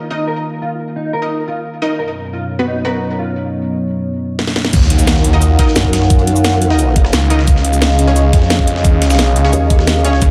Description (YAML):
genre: dark technical drum and bass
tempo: 175 BPM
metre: 4/4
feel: straight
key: Eb minor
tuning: A4 = 439 Hz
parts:
  - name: dark analog pad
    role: sustained chords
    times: 0.0-10.3 s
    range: F#3 to Gb5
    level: -21 LUFS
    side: equal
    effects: chorus, sidechain pumping
  - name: mellow electric guitar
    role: arpeggios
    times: 0.1-3.3 s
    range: Eb4 to Bb4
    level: -25 LUFS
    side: equal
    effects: ensemble chorus, sidechain pumping, tape echo
  - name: orchestra-hit-like synth stab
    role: stabs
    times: 0.1-3.0, 5.3-10.1 s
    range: B3 to Eb5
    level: -24 LUFS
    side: equal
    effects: built-in reverb, tape echo
  - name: drum and bass drum kit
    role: drums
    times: 4.4-10.3 s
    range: cabasa, crash cymbal, hi-hat, rim click, snare drum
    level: -21 LUFS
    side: equal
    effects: none
  - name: snarling distorted saw bass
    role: bass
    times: 4.7-10.3 s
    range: Cb2 to F2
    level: -15 LUFS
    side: equal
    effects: distortion, overdrive, sidechain pumping
  - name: breakbeat sampler-style drum kit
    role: drums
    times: 4.7-10.3 s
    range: hi-hat, snare drum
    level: -29 LUFS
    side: equal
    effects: high-pass filter on hats, high-pass filter on snare, high-pass filter on room
  - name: electronic kick drum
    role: drums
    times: 4.7-10.3 s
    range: none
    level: -14 LUFS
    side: equal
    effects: none
  - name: impact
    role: sound effects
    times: 4.7-6.1 s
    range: none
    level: -20 LUFS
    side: equal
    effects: none
  - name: formant-sweep wobble bass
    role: bass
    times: 5.8-7.1, 9.5-10.2 s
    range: Eb2 to Gb2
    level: -16 LUFS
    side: equal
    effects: chorus
room: light reverb, digital ambience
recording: none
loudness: -14 LUFS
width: mono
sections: 0.0-4.7 A section; 4.7-10.3 B section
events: drum fill 4.4-4.7; drop 4.7-10.3; impact 4.7-6.1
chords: 0.0 Eb5; 2.0 B; 4.7 Ebm; 7.5 Dbadd9